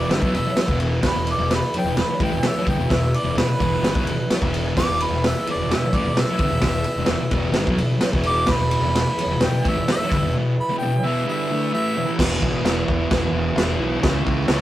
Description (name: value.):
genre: garage rock duo or trio.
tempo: 129 BPM.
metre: 4/4.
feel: straight.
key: E mixolydian.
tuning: A4 = 440 Hz.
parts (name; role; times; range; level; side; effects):
clear harmonica; melody; 0.0-12.2 s; B4 to D6; -26 LUFS; right 1 dB; overdrive.
overdriven combo organ; sustained chords; 0.0-14.6 s; E4 to C#5; -29 LUFS; right 1 dB; none.
thick fuzz guitar; riff; 0.0-14.6 s; E2 to D4; -23 LUFS; equal; distortion.
fuzz fingered electric bass; bass; 0.0-14.6 s; E1 to C#2; -27 LUFS; equal; overdrive, tube saturation.
vintage drum kit; drums; 0.1-14.6 s; crash cymbal, kick drum, ride cymbal, snare drum; -22 LUFS; equal; none.
room: light reverb.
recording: rough rehearsal-room recording, warm saturation.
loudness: -18 LUFS.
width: side -14 dB against mid.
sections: 0.0-12.2 A section; 12.2-14.6 B section.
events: harmonica solo 0.0-12.2.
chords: 0.0 E; 14.0 C#m.